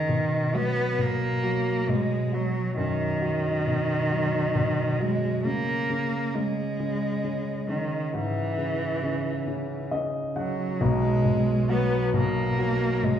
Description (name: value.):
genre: pop.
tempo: 45 BPM (dotted quarters).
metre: 6/8.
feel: straight.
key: B major.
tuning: A4 = 440 Hz.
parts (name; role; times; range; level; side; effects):
warm cello; melody; 0.0-13.2 s; D#3 to B3; -27 LUFS; equal; none.
warm concert grand piano; accompaniment; 0.0-13.2 s; B1 to F#5; -26 LUFS; equal; none.
room: wet large studio reverb, RT60 1.4 s.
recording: band playing live in one room.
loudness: -24 LUFS.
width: side -9 dB against mid.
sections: 0.0-10.8 A section; 10.8-13.2 B section.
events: grand piano fill 9.5-10.8.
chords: 0.1 B; 5.5 C#m; 10.8 B5.